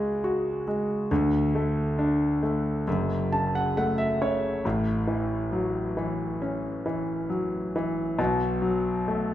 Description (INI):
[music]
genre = folk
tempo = 68 BPM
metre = 4/4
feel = straight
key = unclear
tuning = A4 = 440 Hz
[part]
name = clear concert grand piano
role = solo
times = 0.0-9.3 s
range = F#1 to A5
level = -24 LUFS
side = equal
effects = none
[sound]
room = wet recital hall reverb, RT60 1.4 s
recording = recorded in a church or concert hall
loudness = -24 LUFS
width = side -12 dB against mid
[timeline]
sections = 0.0-9.3 A section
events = none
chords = 0.0 C#sus4; 1.1 D5; 2.9 F#m; 4.6 A6; 8.2 B7(no3)